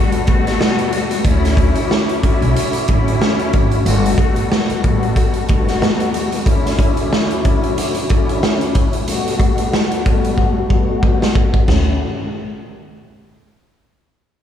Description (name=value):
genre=hip hop, boom-bap hip-hop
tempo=92 BPM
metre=4/4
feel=swing 56% on 16ths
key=D major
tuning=A4 = 443 Hz
part: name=rich studio string section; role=accompaniment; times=0.0-11.9 s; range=B2 to F#4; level=-20 LUFS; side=left 3 dB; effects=cassette tape, high-pass filter, low-pass filter, analog delay
part: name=dark analog pad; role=sustained chords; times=0.0-12.0 s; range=D3 to D6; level=-27 LUFS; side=equal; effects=chorus, high-pass filter, low-pass filter
part: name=raw garage drum kit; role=drums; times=0.1-11.9 s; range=crash cymbal, hi-hat, kick drum, snare drum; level=-16 LUFS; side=equal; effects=none
part: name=upright bass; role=bass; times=0.3-5.8, 11.7-12.0 s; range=G1 to D2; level=-19 LUFS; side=equal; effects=none
room=small room ambience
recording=echo-heavy mix, studio reverb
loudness=-14 LUFS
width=side -9 dB against mid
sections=0.0-1.2 A section; 1.2-11.7 B section; 11.7-14.3 C section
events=filter sweep 1.2-11.7; drum fill 10.4-11.7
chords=0.0 Gmaj9; 1.2 Dmaj9; 3.9 Gmaj9; 6.5 Dmaj9; 9.1 Gmaj9; 11.7 Dmaj9